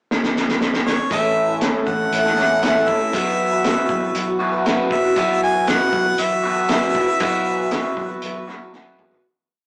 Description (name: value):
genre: folk rock and heartland rock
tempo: 118 BPM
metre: 4/4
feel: straight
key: unclear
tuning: A4 = 440 Hz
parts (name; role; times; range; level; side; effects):
- cloth-damped thuddy drum kit; drums; 0.1-9.2 s; hi-hat, kick drum, snare drum, toms; -24 LUFS; equal; none
- clear harmonica; melody; 0.9-8.7 s; C#5 to G#5; -24 LUFS; equal; none
- picked twelve-string acoustic guitar; accompaniment; 1.1-9.3 s; A2 to B4; -25 LUFS; equal; none
- hand-pumped harmonium; sustained chords; 1.1-9.2 s; E4 to E5; -36 LUFS; equal; none
- electric guitar through a small old amp; riff; 1.1-9.2 s; A2 to A4; -26 LUFS; equal; phaser
- fingered electric bass; bass; 1.1-9.0 s; A1 to B1; -34 LUFS; equal; none
room: moderate stone room reverb, RT60 1.0 s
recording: rough rehearsal-room recording, tube saturation, small speaker sound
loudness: -19 LUFS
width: mono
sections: 0.0-1.1 pickup bar; 1.1-9.2 pre-chorus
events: drum fill 0.1-1.1, 8.7-9.2; fade-out 7.2-9.2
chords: 0.0 N.C.; 1.1 A; 3.1 Bsus4